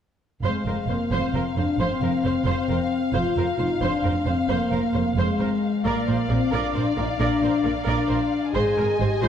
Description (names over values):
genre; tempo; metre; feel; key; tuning
cinematic; 89 BPM (dotted quarters); 12/8; straight; F dorian; A4 = 440 Hz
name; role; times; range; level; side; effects
warm symphonic violin section; second line; 0.4-9.3 s; D5 to Ab5; -30 LUFS; left 4 dB; none
rich symphonic viola section; accompaniment; 0.4-9.3 s; Bb4 to D5; -29 LUFS; right 3 dB; none
clear studio cello section; bass; 0.4-9.3 s; F2 to Bb2; -29 LUFS; right 3 dB; none
warm symphonic double bass section; bass; 0.4-9.3 s; F1 to Bb1; -28 LUFS; right 3 dB; none
mellow French horn section; sustained chords; 0.5-9.3 s; Ab3 to Ab4; -24 LUFS; left 3 dB; none
room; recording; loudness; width
moderate scoring stage reverb, RT60 1.9 s; dark, warm production; -21 LUFS; side -8 dB against mid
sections
0.4-9.3 A section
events
none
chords
0.4 Fm; 5.8 Bb; 8.6 Ab